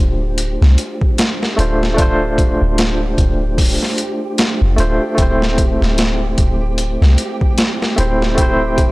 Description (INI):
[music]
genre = trip hop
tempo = 75 BPM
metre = 4/4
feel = swing 59% on 16ths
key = D minor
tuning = A4 = 440 Hz
[part]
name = barky tine electric piano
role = accompaniment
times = 0.0-8.9 s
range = A3 to C5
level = -19 LUFS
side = equal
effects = tremolo, tape echo
[part]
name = soft 808-style bass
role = bass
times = 0.0-8.9 s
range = D1 to C2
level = -16 LUFS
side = equal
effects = none
[part]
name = flickering grainy texture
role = texture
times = 0.0-8.9 s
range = G4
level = -28 LUFS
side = right 2 dB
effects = built-in reverb
[part]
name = boom bap sampler-style drum kit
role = drums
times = 0.4-8.9 s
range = hi-hat, kick drum, snare drum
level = -16 LUFS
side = equal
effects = overdrive
[sound]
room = little or no reverb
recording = dry, gritty hardware recording, cassette tape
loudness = -13 LUFS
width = side -21 dB against mid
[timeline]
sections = 0.0-8.9 A section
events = none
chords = 0.0 Dm7; 5.2 Am/D